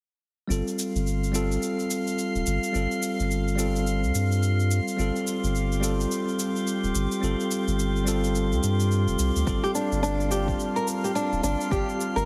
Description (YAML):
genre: organic downtempo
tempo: 107 BPM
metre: 4/4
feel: swing 60% on 16ths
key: unclear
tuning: A4 = 439 Hz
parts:
  - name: bell-like tine electric piano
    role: accompaniment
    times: 0.5-12.3 s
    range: G3 to A5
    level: -30 LUFS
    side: equal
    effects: vintage 12-bit sampler grit, sidechain pumping, tape echo
  - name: warm sub bass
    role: bass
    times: 0.5-12.3 s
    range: D1 to G2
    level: -28 LUFS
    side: equal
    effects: sidechain pumping
  - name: cabasa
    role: drums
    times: 0.5-12.3 s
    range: none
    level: -38 LUFS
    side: equal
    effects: none
  - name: drifting glass-harmonics texture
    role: texture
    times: 0.9-12.3 s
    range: F4 to F5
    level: -36 LUFS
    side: equal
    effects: chorus, built-in reverb
  - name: electronic kick drum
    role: drums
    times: 9.5-11.8 s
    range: none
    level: -32 LUFS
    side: equal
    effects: overdrive
  - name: flamenco guitar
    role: arpeggios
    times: 9.6-12.3 s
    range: D4 to Bb4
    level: -29 LUFS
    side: equal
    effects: tape echo
room: moderate lush hall reverb, RT60 2.2 s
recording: heavily compressed radio sound, multiband compression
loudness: -26 LUFS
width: mono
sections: 0.5-12.3 A section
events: filter sweep on sub bass 0.5-12.3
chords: 0.5 G7(no3)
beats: | 0.50 1.06 1.62 2.18 | 2.74 3.30 3.86 4.42 | 4.99 5.55 6.11 6.67 | 7.23 7.79 8.35 8.91 | 9.47 10.03 10.59 11.15 | 11.71